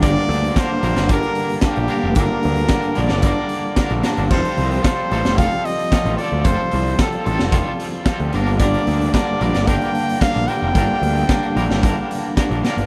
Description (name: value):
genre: indie rock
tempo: 112 BPM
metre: 4/4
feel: straight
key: G minor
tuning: A4 = 440 Hz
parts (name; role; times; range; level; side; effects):
- clear trumpet; melody; 0.0-12.4 s; G4 to G5; -26 LUFS; equal; slapback echo
- twangy electric guitar; riff; 0.0-12.9 s; G2 to Bb4; -24 LUFS; equal; harmonic tremolo
- fuzz picked electric bass; bass; 0.0-12.9 s; F1 to D2; -23 LUFS; equal; overdrive
- raw garage drum kit; drums; 0.0-12.9 s; crash cymbal, hi-hat, kick drum, snare drum; -23 LUFS; equal; none
room: little or no reverb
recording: none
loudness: -18 LUFS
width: mono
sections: 0.0-12.9 A section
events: none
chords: 0.0 Gm; 4.3 Fadd9; 8.3 Gm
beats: | 0.02 0.56 1.09 1.63 | 2.16 2.70 3.24 3.77 | 4.31 4.84 5.38 5.92 | 6.46 6.99 7.53 8.07 | 8.60 9.14 9.68 10.21 | 10.75 11.29 11.83 12.37